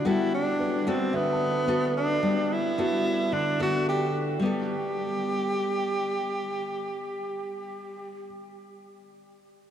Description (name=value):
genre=bossa nova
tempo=110 BPM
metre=4/4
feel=straight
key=G major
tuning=A4 = 443 Hz
part: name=breathy tenor saxophone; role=melody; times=0.0-8.3 s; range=B3 to G4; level=-27 LUFS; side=right 1 dB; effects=none
part: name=nylon-string guitar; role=accompaniment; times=0.0-8.3 s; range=D3 to A4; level=-29 LUFS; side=left 1 dB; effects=none
part: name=warm grand piano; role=accompaniment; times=0.6-9.7 s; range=B4 to A5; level=-39 LUFS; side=right 2 dB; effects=none
room=wet cathedral reverb, RT60 6.2 s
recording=in a vast, echoing space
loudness=-24 LUFS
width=side -9 dB against mid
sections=0.0-4.4 A section; 4.4-8.8 B section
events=none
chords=0.0 Gmaj9; 4.4 Gadd9